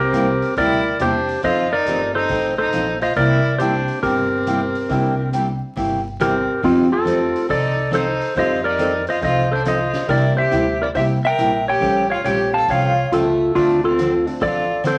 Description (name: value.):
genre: country, western swing.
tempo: 139 BPM.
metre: 4/4.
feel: swing 66% on 8ths.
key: unclear.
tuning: A4 = 440 Hz.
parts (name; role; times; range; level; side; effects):
clean lap steel guitar; melody; 0.0-15.0 s; C4 to A5; -21 LUFS; equal; none.
clear fiddle; second line; 0.0-15.0 s; G3 to Bb4; -27 LUFS; equal; none.
upright bass; bass; 0.0-15.0 s; G1 to F2; -28 LUFS; equal; none.
picked steel-string acoustic guitar; accompaniment; 0.1-15.0 s; C3 to A4; -26 LUFS; equal; none.
swinging big-band drum kit; drums; 0.1-15.0 s; hi-hat, kick drum, snare drum; -40 LUFS; equal; none.
clear upright piano; accompaniment; 1.0-14.4 s; G3 to A4; -33 LUFS; equal; none.
room: wet club reverb, RT60 0.7 s.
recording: vinyl crackle.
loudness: -19 LUFS.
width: mono.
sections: 0.0-15.0 A section.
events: none.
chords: 0.0 C9; 1.4 F9; 3.2 C9; 6.6 F9; 10.1 C9; 11.8 A7alt; 13.6 Dm7.